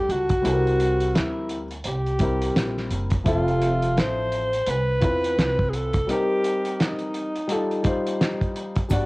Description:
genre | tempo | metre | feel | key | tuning
hip hop, jazz-hop | 85 BPM | 4/4 | swing 60% on 16ths | unclear | A4 = 440 Hz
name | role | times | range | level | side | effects
mellow alto saxophone | melody | 0.0-9.1 s | Eb4 to C5 | -25 LUFS | equal | cassette tape, plate reverb
dark concert grand piano | accompaniment | 0.0-9.1 s | F3 to F#5 | -27 LUFS | left 2 dB | plate reverb
upright bass | bass | 0.0-9.1 s | F1 to E2 | -26 LUFS | equal | none
cloth-damped thuddy drum kit | drums | 0.1-9.1 s | hi-hat, kick drum, snare drum | -25 LUFS | equal | cassette tape
egg shaker | percussion | 8.9-9.1 s | none | -46 LUFS | equal | none
room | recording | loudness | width
moderate booth ambience, RT60 0.2 s | home recording on cassette | -21 LUFS | side -22 dB against mid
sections
0.0-9.1 A section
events
none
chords
0.4 C7; 3.3 Fmaj7; 6.1 Cm7; 7.5 F9

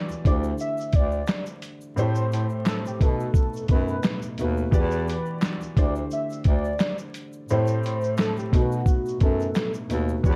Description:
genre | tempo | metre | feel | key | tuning
lo-fi hip hop | 87 BPM | 4/4 | swing 55% on 16ths | unclear | A4 = 440 Hz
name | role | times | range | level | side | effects
dark upright piano | accompaniment | 0.0-10.4 s | A2 to D5 | -31 LUFS | equal | none
clear bass clarinet | bass | 0.1-10.4 s | D2 to B2 | -30 LUFS | equal | none
lo-fi sampler-style drum kit | drums | 0.1-10.4 s | handclaps, hi-hat, kick drum, shaker, snare drum | -25 LUFS | equal | none
egg shaker | percussion | 0.1-10.4 s | none | -58 LUFS | equal | none
warm velvety synth lead | melody | 0.3-10.4 s | F#4 to E5 | -33 LUFS | equal | chorus
room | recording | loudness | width
studio reverb | dark, warm production, vinyl crackle | -24 LUFS | mono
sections
0.0-10.4 A section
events
none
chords
0.2 D7sus4; 2.0 Am7; 3.0 B7; 4.7 Em7; 5.8 D7sus4; 7.5 Am7; 8.5 B7

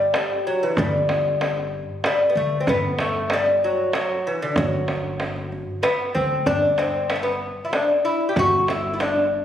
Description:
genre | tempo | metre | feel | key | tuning
Persian modal ensemble | 95 BPM | 3/4 | straight | G dastgah mahur | A4 = 440 Hz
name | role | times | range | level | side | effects
lute | melody | 0.0-9.3 s | D3 to G4 | -21 LUFS | left 1 dB | none
tombak | percussion | 0.1-9.2 s | none | -26 LUFS | right 1 dB | none
upright bass | bass | 0.8-9.4 s | G1 to D2 | -28 LUFS | equal | none
room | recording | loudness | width
moderate recital hall reverb, RT60 1.3 s | recorded on a phone in the room, studio reverb, compression | -19 LUFS | side -10 dB against mid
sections
0.0-9.4 A section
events
none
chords
none

